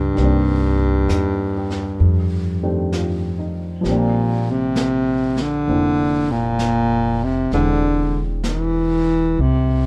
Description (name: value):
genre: jazz ballad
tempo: 65 BPM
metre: 4/4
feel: swing 67% on 8ths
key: unclear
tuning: A4 = 438 Hz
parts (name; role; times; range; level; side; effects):
- mellow baritone saxophone; melody; 0.0-9.9 s; G2 to E3; -22 LUFS; equal; none
- dark baby grand piano; accompaniment; 0.0-9.9 s; D3 to G4; -28 LUFS; equal; none
- upright bass; bass; 0.0-9.9 s; E1 to F2; -24 LUFS; equal; none
- vintage brush drum kit; drums; 0.2-9.9 s; brushed snare drum, hi-hat, snare drum; -34 LUFS; equal; none
room: little or no reverb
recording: none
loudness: -19 LUFS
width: mono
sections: 0.0-9.9 A section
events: none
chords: 0.2 Cm7; 2.0 F13; 3.8 Bb69; 7.5 Eaug7